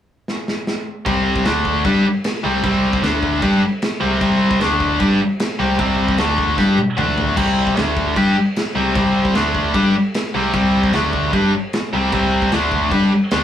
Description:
punk rock; 152 BPM; 4/4; straight; A4 = 440 Hz
big rock drum kit; drums; 0.3-13.4 s; crash cymbal, kick drum, snare drum, toms; -23 LUFS; equal
tight distorted guitar; riff; 1.1-13.4 s; C3 to G4; -17 LUFS; equal; distortion
growling picked electric bass; bass; 1.1-13.4 s; C2 to G2; -19 LUFS; left 1 dB; overdrive
light reverb; band playing live in one room, small room ambience; -15 LUFS; side -10 dB against mid
0.0-1.1 A section; 1.1-13.4 B section
drum fill 0.3-1.1, 6.6-7.4
0.0 N.C.; 1.1 C5; 1.5 D5; 1.9 C5; 3.0 D5; 3.4 C5; 4.6 D5; 5.0 C5; 6.2 D5; 6.6 G5; 7.0 D5; 7.4 C5; 7.8 D5; 8.2 C5; 9.3 D5; 9.7 C5; 10.9 D5; 11.3 C5; 12.5 D5; 12.9 G5

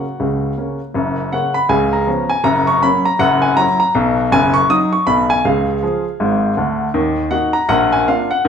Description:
jazz, stride piano; 160 BPM; 4/4; swing 61% on 8ths; F# major; A4 = 440 Hz
clear baby grand piano; solo; 0.0-8.5 s; F#1 to D#6; -13 LUFS; equal
wet large studio reverb, RT60 0.9 s; band playing live in one room; -13 LUFS; side -7 dB against mid
0.9-8.5 A section
0.0 F#; 1.7 C#7; 2.5 F#; 3.2 F#5; 4.0 B; 5.5 C#; 7.0 D#m; 7.7 A#

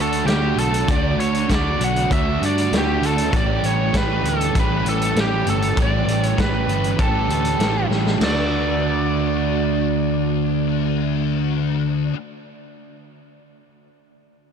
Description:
rock, shoegaze and dream pop; 98 BPM; 4/4; straight; D major; A4 = 439 Hz
biting lead guitar; melody; 0.0-11.4 s; G4 to F#5; -25 LUFS; equal; overdrive, tape echo
crunchy overdriven guitar; riff; 0.0-12.2 s; A2 to G4; -24 LUFS; right 13 dB; reverse reverb
thick fuzz guitar; riff; 0.0-12.1 s; A2 to D4; -25 LUFS; left 13 dB; distortion, ensemble chorus
picked electric bass; bass; 0.0-12.1 s; G1 to G2; -24 LUFS; equal
loose indie drum kit; drums; 0.1-8.4 s; crash cymbal, hi-hat, kick drum, snare drum; -24 LUFS; equal
studio ambience; dark, warm production; -17 LUFS; side -7 dB against mid
0.0-8.2 A section; 8.2-10.6 B section
drum fill 7.9-8.2
0.0 D; 3.3 A7(no3); 8.2 D

